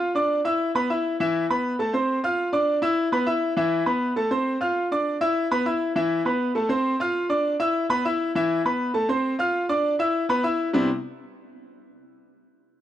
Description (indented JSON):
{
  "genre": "latin",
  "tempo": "201 BPM",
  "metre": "4/4",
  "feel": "straight",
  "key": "unclear",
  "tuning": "A4 = 441 Hz",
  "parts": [
    { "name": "bright concert grand piano", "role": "solo", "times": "0.0-10.9 s", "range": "C3 to F6", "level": "-21 LUFS", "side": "equal", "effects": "none" }
  ],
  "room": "light reverb, small room reverb",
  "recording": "dry, close 1970s-style studio recording",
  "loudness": "-21 LUFS",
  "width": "side -11 dB against mid",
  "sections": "0.0-6.0 A section; 6.0-10.7 B section; 10.7-11.9 C section",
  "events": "none",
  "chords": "0.0 Dmadd9; 0.6 E5; 1.8 F/A; 2.4 Dmadd9; 3.0 E5; 4.2 F/A; 4.8 Dmadd9; 5.4 Bsus4; 6.0 E5; 6.5 F/A; 7.1 Dmadd9; 7.7 E5; 8.9 F/A; 9.5 Dmadd9; 10.1 Bsus4; 10.7 Cmaj9"
}